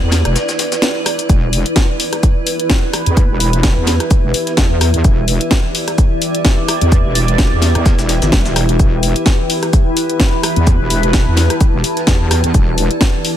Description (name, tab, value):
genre	bass house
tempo	128 BPM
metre	4/4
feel	swing 55% on 16ths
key	E minor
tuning	A4 = 440 Hz
part	wobble bass	bass	0.0-12.9 s	E1 to E2	-15 LUFS	equal	chorus, overdrive, sidechain pumping
part	granular cloud pad	texture	0.0-13.4 s	E4 to A5	-21 LUFS	equal	built-in reverb, sidechain pumping
part	breakbeat sampler-style drum kit	drums	0.1-13.4 s	hi-hat, shaker, snare drum	-26 LUFS	left 2 dB	none
part	house drum kit	drums	0.1-13.3 s	hi-hat, rim click, snare drum	-18 LUFS	left 1 dB	none
part	sweeping resonant pad	sustained chords	1.3-13.4 s	E3 to D5	-21 LUFS	equal	chorus, sidechain pumping
part	electronic kick drum	drums	1.3-13.1 s	none	-13 LUFS	equal	none
room	light reverb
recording	none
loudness	-11 LUFS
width	side -11 dB against mid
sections	0.0-13.4 A section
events	break 0.4-1.3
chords	0.0 Em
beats	0.36 0.83 | 1.29 1.76 2.23 2.70 | 3.17 3.64 4.11 4.58 | 5.04 5.51 5.98 6.45 | 6.92 7.39 7.86 8.33 | 8.79 9.26 9.73 10.20 | 10.67 11.14 11.61 12.08 | 12.54 13.01